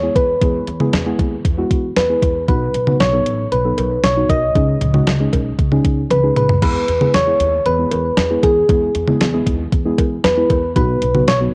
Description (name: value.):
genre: synth-pop.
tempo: 116 BPM.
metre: 4/4.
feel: straight.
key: E major.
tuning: A4 = 440 Hz.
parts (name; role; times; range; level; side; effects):
soft struck synth lead; melody; 0.0-11.4 s; G#4 to D#5; -20 LUFS; equal; chorus, cassette tape, analog delay.
muted felt-like synth keys; accompaniment; 0.0-11.5 s; F#3 to A4; -24 LUFS; equal; chorus, phaser, cassette tape.
upright bass; bass; 0.0-11.5 s; A1 to E2; -24 LUFS; equal; none.
clean 12-bit digital drum machine; drums; 0.2-11.4 s; cowbell, crash cymbal, hi-hat, kick drum, snare drum, toms; -20 LUFS; equal; cassette tape.
room: light reverb.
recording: home recording on cassette.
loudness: -16 LUFS.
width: mono.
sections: 0.0-6.6 A section; 6.6-11.5 A section.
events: drum fill 6.1-6.6.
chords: 0.0 E; 2.5 Badd9; 4.6 C#sus2; 6.6 E; 10.8 B.